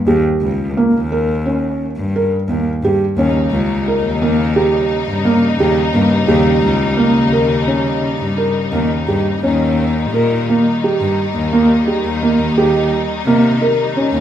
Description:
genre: contemporary instrumental, chamber music in an uneven meter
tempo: 173 BPM (eighths)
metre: 9/8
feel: straight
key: Eb mixolydian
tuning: A4 = 439 Hz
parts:
  - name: felt-muted upright piano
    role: arpeggios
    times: 0.1-14.2 s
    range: Bb3 to Bb4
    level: -16 LUFS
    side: right 2 dB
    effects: none
  - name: rich cello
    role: bass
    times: 0.1-14.2 s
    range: Db2 to C3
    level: -18 LUFS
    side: left 2 dB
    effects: none
  - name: rich symphonic string section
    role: sustained chords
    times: 3.2-14.2 s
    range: Db3 to Eb4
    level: -20 LUFS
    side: left 2 dB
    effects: none
room: light reverb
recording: minimal, uncompressed stereo recording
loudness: -13 LUFS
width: side -10 dB against mid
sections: 0.0-9.4 A section; 9.4-14.2 B section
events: none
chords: 0.0 Eb7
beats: | 0.07 0.42 0.76 1.11 1.45 1.80 2.14 2.49 2.83 | 3.18 3.52 3.86 4.21 4.55 4.90 5.25 5.59 5.94 | 6.28 6.63 6.97 7.32 7.67 8.02 8.37 8.73 9.08 | 9.43 9.79 10.14 10.49 10.84 11.19 11.53 11.88 12.23 | 12.57 12.92 13.27 13.62 13.96

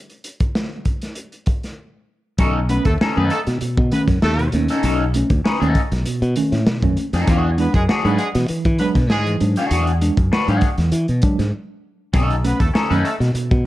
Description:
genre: funk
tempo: 98 BPM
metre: 4/4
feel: straight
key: B mixolydian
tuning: A4 = 440 Hz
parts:
  - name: crunchy breakbeat drum kit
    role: drums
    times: 0.1-13.6 s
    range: hi-hat, kick drum, snare drum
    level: -20 LUFS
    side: equal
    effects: none
  - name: electric guitar at the edge of break-up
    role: accompaniment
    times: 2.4-13.1 s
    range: C#4 to B4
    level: -22 LUFS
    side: left 3 dB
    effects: phaser
  - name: mellow tine electric piano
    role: stabs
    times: 2.4-13.5 s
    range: B2 to D4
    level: -23 LUFS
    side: right 2 dB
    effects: medium stereo tremolo
  - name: modern bright fingered electric bass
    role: bass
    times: 2.4-13.6 s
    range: B1 to E3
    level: -19 LUFS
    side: equal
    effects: none
  - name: clear horn section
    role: second line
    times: 2.7-13.1 s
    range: G#3 to B4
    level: -26 LUFS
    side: right 1 dB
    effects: none
room: light reverb, small room ambience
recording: dark, warm production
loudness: -16 LUFS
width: side -16 dB against mid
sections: 0.0-2.4 A section; 2.4-13.7 B section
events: break 1.8-2.4, 11.5-12.1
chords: 0.0 N.C.; 2.4 B9; 7.3 E9; 12.1 B9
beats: 0.56 1.17 1.78 | 2.39 3.00 3.62 4.23 | 4.84 5.45 6.06 6.67 | 7.28 7.89 8.50 9.10 | 9.71 10.32 10.93 11.53 | 12.14 12.75 13.35

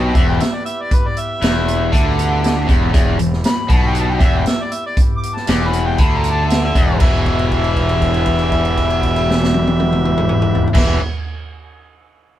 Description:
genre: blues rock power trio and southern rock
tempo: 118 BPM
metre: 4/4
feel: straight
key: E minor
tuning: A4 = 440 Hz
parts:
  - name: mellow harmonica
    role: melody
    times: 0.0-11.0 s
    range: B4 to D6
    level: -23 LUFS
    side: equal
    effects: overdrive
  - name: overdriven tonewheel organ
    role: sustained chords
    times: 0.0-11.0 s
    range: B3 to B4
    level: -29 LUFS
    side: right 3 dB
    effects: slow rotary speaker
  - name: biting overdriven guitar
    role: riff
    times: 0.0-11.0 s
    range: E2 to E3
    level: -19 LUFS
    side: left 1 dB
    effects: none
  - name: fuzz fingered electric bass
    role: bass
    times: 0.0-11.0 s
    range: E1 to D2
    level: -19 LUFS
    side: equal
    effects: overdrive
  - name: vintage drum kit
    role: drums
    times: 0.2-10.9 s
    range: crash cymbal, hi-hat, kick drum, snare drum, toms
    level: -17 LUFS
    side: equal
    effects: none
room: light reverb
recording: band playing live in one room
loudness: -13 LUFS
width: side -12 dB against mid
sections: 0.0-7.0 A section; 7.0-11.1 B section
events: held note 7.0-10.8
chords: 0.0 Em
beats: 0.40 | 0.90 1.41 1.92 2.43 | 2.94 3.44 3.95 4.46 | 4.97 5.47 5.98 6.49 | 7.00 7.51 8.02 8.52 | 9.03 9.54 10.05 10.56

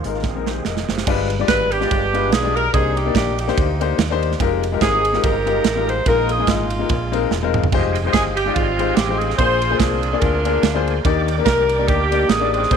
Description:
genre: uptempo gospel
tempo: 144 BPM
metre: 4/4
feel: swing 56% on 8ths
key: Eb major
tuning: A4 = 440 Hz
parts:
  - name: bright tonewheel organ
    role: sustained chords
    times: 0.0-1.1, 7.7-12.8 s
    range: Eb3 to D6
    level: -30 LUFS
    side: right 11 dB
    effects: overdrive, chorus vibrato, fast rotary speaker
  - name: deep dub fingered electric bass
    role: bass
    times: 0.0-12.8 s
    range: Fb1 to Eb2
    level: -24 LUFS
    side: right 1 dB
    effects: none
  - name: modern studio drum kit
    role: drums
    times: 0.0-12.8 s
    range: crash cymbal, hi-hat, kick drum, ride cymbal, snare drum, splash cymbal, toms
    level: -22 LUFS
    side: right 5 dB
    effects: none
  - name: clear concert grand piano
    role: accompaniment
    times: 0.1-12.8 s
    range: G2 to Eb5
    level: -22 LUFS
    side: left 12 dB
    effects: none
  - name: warm saxophone section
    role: melody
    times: 1.5-12.8 s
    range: Ab3 to C5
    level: -20 LUFS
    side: right 2 dB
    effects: none
room: moderate plate reverb, RT60 1.5 s, small room ambience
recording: 1960s-style stereo with parts hard left and right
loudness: -16 LUFS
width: side -7 dB against mid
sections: 0.0-1.1 A section; 1.1-12.8 B section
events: drum fill 0.2-1.1, 7.3-7.7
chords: 0.2 Bb9sus4; 1.1 G7b9; 2.7 Cm9; 4.4 Fm11; 6.1 Bb7sus4; 6.9 Bb9sus4; 7.7 Fm9; 9.4 Bb9; 11.0 Ebmaj7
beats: 0.23 0.65 | 1.07 1.49 1.90 2.32 | 2.74 3.15 3.57 3.98 | 4.40 4.82 5.23 5.65 | 6.06 6.48 6.89 7.31 | 7.72 8.14 8.55 8.97 | 9.39 9.80 10.22 10.63 | 11.05 11.46 11.88 12.29 | 12.71

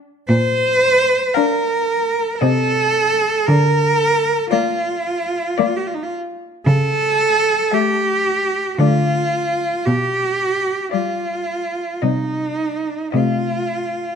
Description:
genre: classical, lyrical piece for cello ensemble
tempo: 56 BPM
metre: 3/4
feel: rubato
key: unclear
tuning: A4 = 435 Hz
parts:
  - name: rich cello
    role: melody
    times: 0.0-14.0 s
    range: D5 to F5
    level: -25 LUFS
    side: left 12 dB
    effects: none
  - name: rich cello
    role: accompaniment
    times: 0.0-14.0 s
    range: G3 to D4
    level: -23 LUFS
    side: left 12 dB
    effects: none
  - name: rich cello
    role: second line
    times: 0.3-14.2 s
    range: Eb4 to C5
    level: -17 LUFS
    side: right 2 dB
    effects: none
  - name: warm cello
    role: bass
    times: 0.3-14.1 s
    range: Bb2 to D3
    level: -19 LUFS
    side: right 1 dB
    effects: none
room: moderate recital hall reverb, RT60 1.4 s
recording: none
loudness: -16 LUFS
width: side -7 dB against mid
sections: 0.0-14.2 A section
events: none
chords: 0.3 Bb; 2.4 Cm6; 3.5 Bb/D; 6.7 A7/C#; 8.8 Dm; 9.9 G7/B; 12.0 Cm; 13.1 Adim/C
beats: | 0.29 1.35 2.41 | 3.47 4.51 5.58 | 6.66 7.72 8.79 | 9.86 10.92 12.02 | 13.13

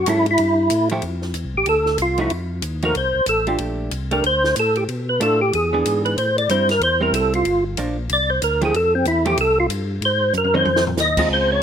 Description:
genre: soul jazz organ trio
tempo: 187 BPM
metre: 4/4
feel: swing 62% on 8ths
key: F major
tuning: A4 = 441 Hz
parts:
  - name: percussive tonewheel organ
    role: melody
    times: 0.0-11.6 s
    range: C4 to Eb5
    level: -18 LUFS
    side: equal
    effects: slow rotary speaker, chorus vibrato
  - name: tonewheel organ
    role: bass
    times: 0.0-11.6 s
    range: G1 to B2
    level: -24 LUFS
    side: left 1 dB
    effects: chorus vibrato, slow rotary speaker
  - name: vintage hollow-body jazz guitar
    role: accompaniment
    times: 0.1-11.6 s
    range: E3 to A4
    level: -25 LUFS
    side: right 3 dB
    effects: none
  - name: compact cocktail drum kit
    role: drums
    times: 0.1-11.2 s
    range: crash cymbal, hi-hat, kick drum, ride cymbal, snare drum, toms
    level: -29 LUFS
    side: left 1 dB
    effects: none
room: moderate plate reverb, RT60 1.6 s, small room reverb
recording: rough home demo mix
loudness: -17 LUFS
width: side -8 dB against mid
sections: 0.0-1.0 A section; 1.0-11.3 B section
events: tonewheel organ solo 1.0-11.6; drum fill 10.3-11.0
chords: 0.4 Fmaj9/G; 1.0 Fmaj7; 2.3 F7; 3.6 Bbmaj13; 4.9 Bm7b5; 5.5 E7; 6.2 Am7; 7.5 Gm7; 8.1 C69; 8.7 Fmaj9; 10.0 Ab7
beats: 0.06 0.38 0.70 | 1.03 1.35 1.67 1.99 | 2.31 2.63 2.95 3.27 | 3.60 3.92 4.24 4.56 | 4.88 5.21 5.53 5.85 | 6.17 6.49 6.81 7.13 | 7.46 7.78 8.10 8.42 | 8.74 9.06 9.38 9.70 | 10.02 10.34 10.66 10.98 | 11.30 11.62

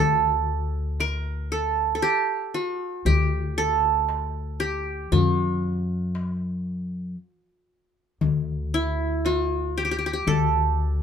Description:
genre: Arabic maqam ensemble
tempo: 116 BPM (eighths)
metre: 10/8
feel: straight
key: D maqam suznak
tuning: A4 = 440 Hz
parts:
  - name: qanun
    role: melody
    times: 0.0-11.0 s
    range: E4 to Bb4+20c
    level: -24 LUFS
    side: right 3 dB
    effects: none
  - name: upright bass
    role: bass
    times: 0.0-11.0 s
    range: D2 to F#2-50c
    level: -26 LUFS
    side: left 1 dB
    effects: none
  - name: darbuka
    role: percussion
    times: 1.0-10.9 s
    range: none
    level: -27 LUFS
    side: left 7 dB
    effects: none
room: light reverb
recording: minimal, uncompressed stereo recording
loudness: -22 LUFS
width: side -7 dB against mid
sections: 0.0-11.0 A section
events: none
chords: none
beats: 0.48 0.99 1.51 2.02 2.54 3.06 3.57 4.09 4.60 | 5.12 5.63 6.15 6.67 7.18 7.70 8.21 8.73 9.24 9.76 | 10.28 10.79

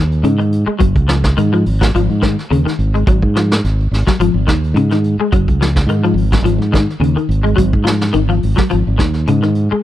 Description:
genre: afrobeat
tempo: 106 BPM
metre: 4/4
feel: swing 54% on 16ths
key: unclear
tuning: A4 = 440 Hz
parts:
  - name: electric guitar at the edge of break-up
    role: arpeggios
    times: 0.0-9.8 s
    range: C#3 to G#3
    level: -17 LUFS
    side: left 3 dB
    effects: ensemble chorus
  - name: fingered electric bass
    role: bass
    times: 0.0-9.8 s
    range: F#1 to G#2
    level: -14 LUFS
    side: right 1 dB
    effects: none
  - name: vintage brush drum kit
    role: drums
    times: 0.1-9.7 s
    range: hi-hat, kick drum, snare drum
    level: -16 LUFS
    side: right 1 dB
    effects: none
room: small room ambience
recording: dry, close 1970s-style studio recording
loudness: -12 LUFS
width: side -13 dB against mid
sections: 0.0-9.8 A section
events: none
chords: 0.0 G#5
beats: 0.23 | 0.79 1.36 1.92 2.49 | 3.06 3.62 4.19 4.75 | 5.32 5.88 6.45 7.01 | 7.58 8.14 8.71 9.27

